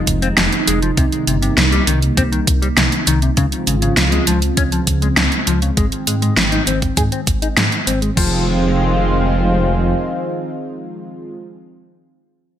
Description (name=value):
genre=synthwave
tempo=100 BPM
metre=4/4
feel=straight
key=F minor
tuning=A4 = 441 Hz
part: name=warm analog pad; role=sustained chords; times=0.0-11.3 s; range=C3 to G5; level=-20 LUFS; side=right 1 dB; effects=chorus, sidechain pumping
part: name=dark detuned saw bass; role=bass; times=0.1-9.9 s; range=F1 to Ab2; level=-18 LUFS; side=equal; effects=none
part: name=electronic kick drum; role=drums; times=0.1-8.3 s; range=none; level=-18 LUFS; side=equal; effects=overdrive
part: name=pop drum kit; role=drums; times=0.1-8.3 s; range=crash cymbal, hi-hat, snare drum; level=-17 LUFS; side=equal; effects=overdrive, gated reverb
part: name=mellow electric guitar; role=riff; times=0.2-8.5 s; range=C3 to Ab4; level=-22 LUFS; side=left 4 dB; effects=analog chorus, low-pass filter, ping-pong delay
room=moderate plate reverb, RT60 1.4 s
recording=bright 1980s-style digital production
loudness=-14 LUFS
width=side -10 dB against mid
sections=0.0-8.2 A section; 8.2-10.6 B section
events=filter sweep on clean electric guitar 0.0-8.2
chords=0.0 Fm7; 1.0 Cm7; 3.4 Dbmaj7; 5.8 Abmaj7; 8.2 Fm7